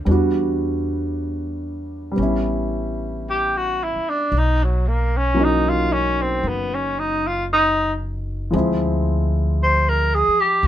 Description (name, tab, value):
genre	jazz ballad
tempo	57 BPM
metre	4/4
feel	swing 66% on 8ths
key	unclear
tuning	A4 = 440 Hz
part	breathy tenor saxophone	melody	0.0-10.7 s	F#3 to C5	-19 LUFS	equal	none
part	warm grand piano	accompaniment	0.0-10.7 s	F3 to Gb4	-23 LUFS	equal	none
part	upright bass	bass	0.0-10.7 s	F#1 to E2	-23 LUFS	equal	none
room	light reverb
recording	minimal, uncompressed stereo recording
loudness	-18 LUFS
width	side -11 dB against mid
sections	0.0-10.7 A section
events	tenor saxophone solo 0.0-10.7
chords	0.1 Em7; 2.2 A9; 4.3 Bmaj9; 8.5 Dm7b5